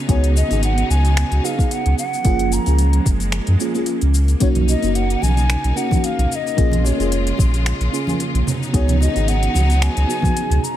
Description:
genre	sunset chillout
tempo	111 BPM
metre	4/4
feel	swing 55% on 16ths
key	unclear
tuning	A4 = 441 Hz
part	clear studio string section	sustained chords	0.0-10.8 s	C#3 to E#4	-26 LUFS	equal	none
part	mellow hollow wooden flute	melody	0.1-10.8 s	C#5 to A#5	-25 LUFS	equal	ping-pong delay
part	mellow FM electric piano	accompaniment	0.1-10.8 s	A#3 to G#4	-24 LUFS	moving between left 4 dB and right 6 dB	chorus, phaser, auto-pan
part	warm sub bass	bass	0.1-10.6 s	E#1 to F#2	-16 LUFS	equal	none
part	electronic kick drum	drums	0.1-10.3 s	none	-18 LUFS	equal	overdrive
part	smooth R&B drum kit	drums	0.1-10.8 s	cabasa, finger snaps, hi-hat	-27 LUFS	left 4 dB	overdrive
part	congas and bongos	percussion	4.6-10.6 s	none	-26 LUFS	right 3 dB	none
room	small room ambience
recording	none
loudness	-15 LUFS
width	side -12 dB against mid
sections	0.0-10.8 A section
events	none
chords	0.0 C#9sus4; 2.2 F#maj9; 4.4 Bmaj9; 6.6 A#m7; 8.5 C#9sus4

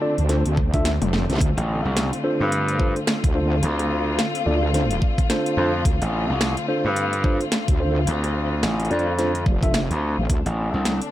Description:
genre	glitch hop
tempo	108 BPM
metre	4/4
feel	swing 59% on 16ths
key	D minor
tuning	A4 = 441 Hz
part	dark studio string section	sustained chords	0.0-11.1 s	D3 to F4	-28 LUFS	left 2 dB	vintage 12-bit sampler grit, sidechain pumping
part	mellow tine electric piano	stabs	0.0-9.8 s	D4 to E5	-26 LUFS	equal	sidechain pumping, dub echo
part	wobble bass	bass	0.2-10.4 s	F1 to D2	-22 LUFS	equal	chorus
part	drum and bass drum kit	drums	0.2-11.1 s	hi-hat, rim click, snare drum, toms	-26 LUFS	equal	none
part	electronic kick drum	drums	0.6-10.4 s	none	-21 LUFS	equal	none
part	gritty slap bass	bass	1.6-11.0 s	A1 to G2	-22 LUFS	equal	overdrive
room	little or no reverb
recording	none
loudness	-19 LUFS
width	side -14 dB against mid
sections	0.0-11.1 A section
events	drum fill 1.0-1.4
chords	0.0 Dm7

